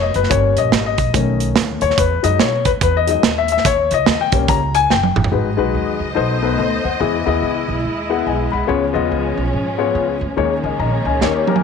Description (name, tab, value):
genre	uptempo gospel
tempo	143 BPM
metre	4/4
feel	swing 62% on 8ths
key	unclear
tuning	A4 = 440 Hz
part	warm upright piano	accompaniment	0.0-11.6 s	G#2 to B5	-17 LUFS	left 10 dB	none
part	upright bass	bass	0.0-11.6 s	E#1 to G#2	-22 LUFS	right 2 dB	none
part	modern studio drum kit	drums	0.1-5.3, 11.2-11.6 s	hi-hat, kick drum, snare drum, toms	-18 LUFS	right 6 dB	none
part	rich studio string section	sustained chords	5.3-11.6 s	D#3 to D#5	-23 LUFS	right 1 dB	none
room	light reverb, small room reverb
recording	1960s-style stereo with parts hard left and right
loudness	-15 LUFS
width	side -6 dB against mid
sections	0.0-5.3 A section; 5.3-11.6 B section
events	upright piano solo 0.0-5.3; drum fill 4.9-5.3, 11.2-11.6; upright piano fill 11.2-11.6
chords	0.3 D#7/G; 1.1 B7; 2.0 Emaj7; 3.6 D#7; 5.3 G#m7; 6.2 B7b9; 7.0 Emaj7; 8.7 C#7; 10.4 D#7sus4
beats	| 0.31 0.72 1.14 1.56 | 1.98 2.40 2.81 3.23 | 3.65 4.07 4.49 4.90 | 5.32 5.74 6.16 6.58 | 7.00 7.42 7.84 8.27 | 8.69 9.11 9.53 9.95 | 10.37 10.79 11.21 11.63